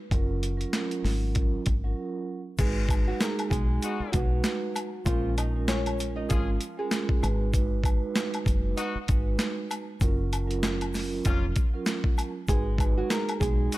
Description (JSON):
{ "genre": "hip hop, boom-bap hip-hop", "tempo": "97 BPM", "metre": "4/4", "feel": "swing 57% on 16ths", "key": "G# dorian", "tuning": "A4 = 437 Hz", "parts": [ { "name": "vibraphone with soft mallets", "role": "accompaniment", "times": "0.1-13.8 s", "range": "F#3 to B4", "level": "-32 LUFS", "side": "right 4 dB", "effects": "high-pass filter, low-pass filter" }, { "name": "deep dub fingered electric bass", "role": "bass", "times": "0.1-13.7 s", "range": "E#1 to B1", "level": "-29 LUFS", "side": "equal", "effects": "none" }, { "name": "boom bap sampler-style drum kit", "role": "drums", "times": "0.1-13.8 s", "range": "crash cymbal, hi-hat, kick drum, snare drum", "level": "-27 LUFS", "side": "equal", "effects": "overdrive" }, { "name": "nylon-string guitar", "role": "melody", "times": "2.6-7.5, 12.5-13.8 s", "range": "E#3 to D#5", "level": "-34 LUFS", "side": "equal", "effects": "high-pass filter, low-pass filter" }, { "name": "egg shaker and woodblock", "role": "percussion", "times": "2.6-13.8 s", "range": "none", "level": "-39 LUFS", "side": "left 4 dB", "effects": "none" }, { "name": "warm horn section", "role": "stabs", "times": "3.8-13.8 s", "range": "A#3 to G#4", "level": "-36 LUFS", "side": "left 5 dB", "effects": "high-pass filter, low-pass filter, ping-pong delay" } ], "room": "small room ambience", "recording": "none", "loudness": "-25 LUFS", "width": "side -17 dB against mid", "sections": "0.0-2.6 A section; 2.6-13.8 B section", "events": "break 2.0-2.6", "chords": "0.1 F#maj7; 2.6 G#m7; 5.1 A#m7; 7.2 G#m7; 10.0 F#maj7; 12.5 G#m7" }